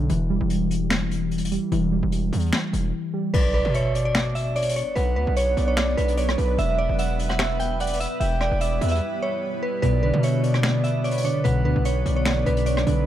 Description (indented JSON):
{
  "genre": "hip hop, trap",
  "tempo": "148 BPM",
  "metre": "4/4",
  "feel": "half-time",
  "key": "B minor",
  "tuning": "A4 = 440 Hz",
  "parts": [
    { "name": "warbly lo-fi synth keys", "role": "accompaniment", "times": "0.0-3.4, 9.8-13.1 s", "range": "B2 to G3", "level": "-24 LUFS", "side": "equal", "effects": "chorus" },
    { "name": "distorted 808-style bass", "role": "bass", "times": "0.0-13.1 s", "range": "E1 to B2", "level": "-24 LUFS", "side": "equal", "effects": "distortion" },
    { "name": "vintage brush drum kit", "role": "drums", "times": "0.1-13.0 s", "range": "crash cymbal, finger snaps, hi-hat, rim click, snare drum", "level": "-29 LUFS", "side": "left 1 dB", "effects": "none" },
    { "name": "glassy synth bell", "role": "melody", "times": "3.3-13.0 s", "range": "B4 to G5", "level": "-27 LUFS", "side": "right 1 dB", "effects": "chorus" },
    { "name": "breathy flute-like synth lead", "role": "second line", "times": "3.3-13.1 s", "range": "B4 to G5", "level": "-29 LUFS", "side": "right 3 dB", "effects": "chorus, tape echo" },
    { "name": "granular cloud pad", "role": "sustained chords", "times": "4.4-13.1 s", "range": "F#3 to B4", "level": "-31 LUFS", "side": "equal", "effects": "built-in reverb" },
    { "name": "impact", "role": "sound effects", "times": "3.3-5.0 s", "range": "none", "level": "-28 LUFS", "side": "equal", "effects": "none" }
  ],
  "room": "light reverb, studio reverb",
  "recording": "dark, warm production",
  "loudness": "-20 LUFS",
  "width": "side -11 dB against mid",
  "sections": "0.0-3.3 A section; 3.3-13.1 B section",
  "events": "break 2.9-3.3, 9.0-9.8; impact 3.3-5.0",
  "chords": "0.1 Em; 3.3 Bm; 6.6 Em; 9.8 Bm"
}